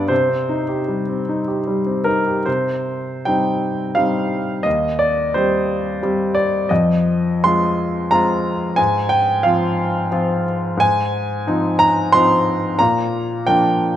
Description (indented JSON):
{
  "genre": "classical, romantic character piece for solo piano",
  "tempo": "72-92 BPM",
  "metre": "3/4",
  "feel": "rubato",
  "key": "C minor",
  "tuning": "A4 = 437 Hz",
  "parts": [
    { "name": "clear grand piano", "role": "solo", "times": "0.0-14.0 s", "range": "Eb2 to C6", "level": "-16 LUFS", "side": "equal", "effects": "none" }
  ],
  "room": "light reverb",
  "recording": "close, detailed microphones",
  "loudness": "-16 LUFS",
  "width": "side -11 dB against mid",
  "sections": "0.0-2.5 A section; 2.5-14.0 B section",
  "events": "none",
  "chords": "0.1 Cm; 4.7 Cm/Eb; 6.7 Fm7; 8.8 Fm/Ab; 10.8 Fm7/Ab; 12.8 Bb"
}